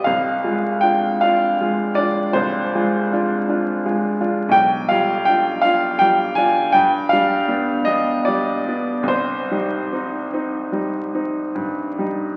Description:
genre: classical, romantic nocturne for solo piano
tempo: 43-57 BPM (dotted quarters)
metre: 12/8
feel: rubato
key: C minor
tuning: A4 = 438 Hz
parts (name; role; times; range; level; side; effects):
- bright grand piano; solo; 0.0-12.4 s; B1 to Ab5; -19 LUFS; equal; none
room: wet concert hall reverb, RT60 2.3 s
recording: very old 78 rpm record, vinyl crackle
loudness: -19 LUFS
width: mono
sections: 0.0-12.4 A section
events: none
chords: 0.1 Dm7b5/C; 4.5 G7/B; 6.7 G7; 9.1 Cm

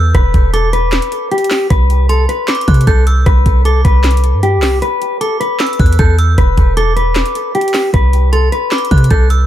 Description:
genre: hip hop, trap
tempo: 154 BPM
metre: 4/4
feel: half-time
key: E minor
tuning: A4 = 439 Hz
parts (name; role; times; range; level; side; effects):
- metallic FM bell; second line; 0.0-9.5 s; C6 to G6; -22 LUFS; right 4 dB; chorus, digital delay
- warm 808-style bass; bass; 0.0-9.5 s; E1 to C3; -11 LUFS; equal; none
- mellow electric guitar; melody; 0.1-9.3 s; G4 to B4; -16 LUFS; left 2 dB; digital delay
- trap drum kit; drums; 0.1-9.4 s; handclaps, hi-hat, kick drum, snare drum; -14 LUFS; equal; none
room: little or no reverb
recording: none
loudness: -10 LUFS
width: side -12 dB against mid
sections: 0.0-9.5 A section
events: break 4.8-5.6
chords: 0.0 Em; 1.7 Csus2; 4.8 E5; 7.9 N.C.

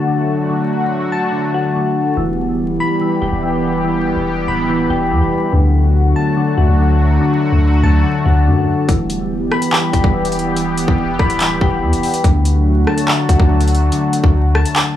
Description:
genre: hip hop, drill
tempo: 143 BPM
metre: 4/4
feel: half-time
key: E minor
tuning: A4 = 441 Hz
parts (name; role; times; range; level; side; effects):
- sweeping resonant pad; sustained chords; 0.0-15.0 s; D3 to G4; -19 LUFS; equal; chorus, low-pass filter
- soft electric-piano-like synth keys; arpeggios; 0.0-15.0 s; D3 to B5; -18 LUFS; left 2 dB; chorus, tremolo, low-pass filter, tape echo
- long sustained 808-style bass; bass; 2.2-14.6 s; D1 to F#2; -16 LUFS; equal; none
- drill drum kit; drums; 8.9-14.9 s; handclaps, hi-hat, kick drum, rim click; -16 LUFS; equal; overdrive
room: little or no reverb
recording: dry, gritty hardware recording, vinyl crackle, small room ambience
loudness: -13 LUFS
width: side -11 dB against mid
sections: 0.0-2.2 A section; 2.2-15.0 B section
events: none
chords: 0.0 D; 2.2 Em; 5.5 D; 8.9 Em; 12.2 D

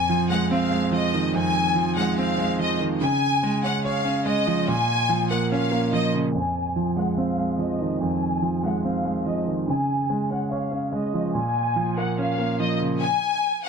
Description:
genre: hip hop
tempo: 144 BPM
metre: 4/4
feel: half-time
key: F phrygian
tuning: A4 = 440 Hz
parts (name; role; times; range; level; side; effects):
- bright studio violin section; melody; 0.0-13.7 s; Eb5 to Ab5; -25 LUFS; left 2 dB; none
- clear concert grand piano; accompaniment; 0.0-13.0 s; F2 to Db5; -23 LUFS; right 2 dB; none
room: moderate scoring stage reverb, RT60 1.9 s, small room ambience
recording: dark, warm production, low-pass filter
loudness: -21 LUFS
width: side -6 dB against mid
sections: 0.0-6.3 A section; 6.3-13.0 B section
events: filter sweep 6.3-13.0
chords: 0.0 Fm7; 3.0 Db; 4.7 Bbm; 6.3 Fm7; 9.7 Db; 11.3 Bbm; 13.0 N.C.

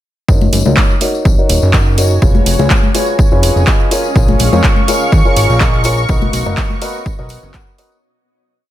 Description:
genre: piano house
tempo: 124 BPM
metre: 4/4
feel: swing 53% on 16ths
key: F# major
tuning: A4 = 442 Hz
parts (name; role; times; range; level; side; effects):
- bright upright piano; riff; 0.3-7.9 s; D#4 to F#5; -18 LUFS; left 1 dB; sidechain pumping, low-pass filter
- fat analog bass; bass; 0.3-7.5 s; D#1 to E#2; -14 LUFS; equal; tube saturation, sidechain pumping
- electronic kick drum; drums; 0.3-7.6 s; none; -12 LUFS; equal; none
- tambourine and congas; percussion; 0.3-8.0 s; none; -21 LUFS; left 8 dB; none
- granular cloud pad; texture; 1.6-8.0 s; B3 to C#6; -23 LUFS; equal; built-in reverb, sidechain pumping
- house drum kit; drums; 0.5-7.9 s; handclaps, hi-hat; -18 LUFS; right 1 dB; overdrive
- analog string pad; sustained chords; 4.2-8.0 s; C#6; -21 LUFS; right 4 dB; ensemble chorus, sidechain pumping
room: digital ambience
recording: none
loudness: -10 LUFS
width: side -13 dB against mid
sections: 0.3-8.0 groove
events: fade-in on ambient pad 0.3-8.0; fade-out 5.4-8.0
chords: 0.3 F#6; 2.2 C#7/E#; 3.9 A#m7; 6.1 Bmaj7

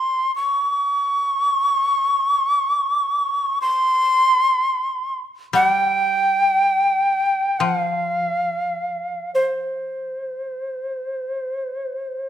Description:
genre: japanese traditional, Japanese chamber music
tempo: free time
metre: none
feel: none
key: unclear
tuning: A4 = 440 Hz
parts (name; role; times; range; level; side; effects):
- bright shakuhachi; melody; 0.0-12.3 s; C5 to Db6; -18 LUFS; equal; none
- koto; accompaniment; 5.5-11.0 s; F3 to G3; -26 LUFS; left 6 dB; none
room: moderate recital hall reverb, RT60 1.3 s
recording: minimal, uncompressed stereo recording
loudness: -18 LUFS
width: side -10 dB against mid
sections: 0.0-12.3 A section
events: none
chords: none

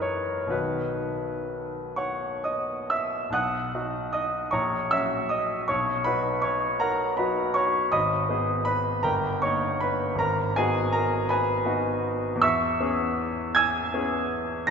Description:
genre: classical, romantic character piece for solo piano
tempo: 40-56 BPM (dotted quarters)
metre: 6/8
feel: rubato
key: B major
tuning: A4 = 439 Hz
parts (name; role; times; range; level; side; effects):
- clear baby grand piano; solo; 0.0-14.7 s; G1 to A#6; -24 LUFS; equal; none
room: wet church reverb, RT60 3.6 s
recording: recorded in a church or concert hall, nothing above 7.9 kHz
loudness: -24 LUFS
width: side -6 dB against mid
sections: 0.0-3.3 A section; 3.3-14.7 A section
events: none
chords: 0.0 F#sus2; 0.5 B; 4.5 F#/A#; 5.7 B; 7.9 G#m; 9.0 D#/G; 10.2 G#m7; 12.4 C#m7/E

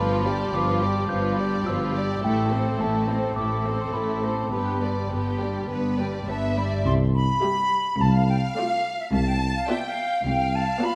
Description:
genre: cinematic, playful, whimsical film cue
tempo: 106 BPM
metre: 4/4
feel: straight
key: unclear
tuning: A4 = 440 Hz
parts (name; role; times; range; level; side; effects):
- dark studio violin section; melody; 0.0-10.9 s; A4 to E5; -36 LUFS; equal; none
- glockenspiel with rubber mallets; melody; 0.0-6.2 s; G5 to G6; -33 LUFS; equal; none
- warm studio violin section; second line; 0.0-10.9 s; E4 to A5; -34 LUFS; equal; none
- rich studio viola section; accompaniment; 0.0-10.9 s; F3 to G4; -33 LUFS; equal; none
- warm studio cello section; bass; 0.0-10.7 s; C2 to A2; -30 LUFS; equal; none
- warm studio double bass section; bass; 0.0-10.7 s; G1 to C2; -33 LUFS; equal; none
- bright small flute group; second line; 6.0-10.9 s; E5 to C6; -29 LUFS; equal; none
- mellow tuba; bass; 6.9-10.7 s; C2; -28 LUFS; equal; none
room: moderate scoring stage reverb, RT60 1.5 s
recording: none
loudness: -24 LUFS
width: mono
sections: 0.0-6.9 A section; 6.9-10.9 B section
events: none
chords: 0.0 G7; 2.2 Am; 4.5 G; 6.9 C; 8.0 Dm7/C; 9.1 G7/C

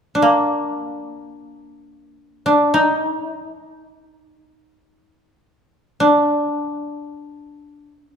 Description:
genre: japanese traditional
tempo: free time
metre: none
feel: none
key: unclear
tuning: A4 = 440 Hz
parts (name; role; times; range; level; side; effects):
- koto; melody; 0.1-8.2 s; Bb3 to Eb4; -17 LUFS; equal; none
room: moderate recital hall reverb, RT60 1.8 s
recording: minimal, uncompressed stereo recording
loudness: -16 LUFS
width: side -7 dB against mid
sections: 0.0-8.2 A section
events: none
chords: none

